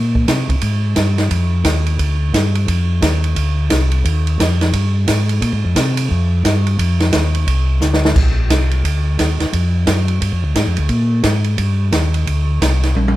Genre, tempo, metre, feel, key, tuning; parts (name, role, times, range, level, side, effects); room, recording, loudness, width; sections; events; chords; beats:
soul jazz organ trio; 175 BPM; 4/4; swing 62% on 8ths; Bb mixolydian; A4 = 440 Hz
mellow tonewheel organ; bass; 0.0-13.2 s; Bb1 to C3; -15 LUFS; equal; slow rotary speaker
open jazz drum kit; drums; 0.2-13.2 s; crash cymbal, hi-hat, kick drum, ride cymbal, snare drum, toms; -18 LUFS; right 1 dB
little or no reverb; -14 LUFS; side -15 dB against mid
0.0-8.2 A section; 8.2-13.2 A section
drum fill 7.8-8.2, 13.0
0.28 0.62 0.96 | 1.31 1.65 1.99 2.33 | 2.68 3.02 3.36 3.71 | 4.05 4.39 4.73 5.08 | 5.42 5.76 6.10 6.45 | 6.79 7.13 7.47 7.82 | 8.16 8.50 8.84 9.19 | 9.53 9.87 10.21 10.56 | 10.90 11.24 11.59 11.93 | 12.27 12.61 12.96